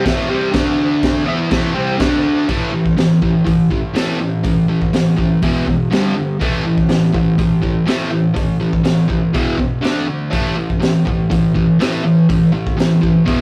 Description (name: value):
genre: garage rock duo or trio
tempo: 122 BPM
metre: 4/4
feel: straight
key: unclear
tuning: A4 = 440 Hz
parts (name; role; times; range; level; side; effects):
- fuzz guitar; riff; 0.0-13.4 s; E2 to E4; -17 LUFS; equal; distortion
- raw garage drum kit; drums; 0.1-13.4 s; crash cymbal, hi-hat, kick drum, snare drum; -22 LUFS; equal; none
room: moderate studio reverb, RT60 0.5 s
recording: rough rehearsal-room recording, warm saturation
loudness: -16 LUFS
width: mono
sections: 0.0-2.5 A section; 2.5-13.4 B section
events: none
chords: 0.0 A5; 0.5 D5; 1.3 A5; 2.0 D5; 2.5 A5; 5.4 E5; 5.9 G5; 6.4 A5; 9.3 E5; 9.8 D5; 10.3 A5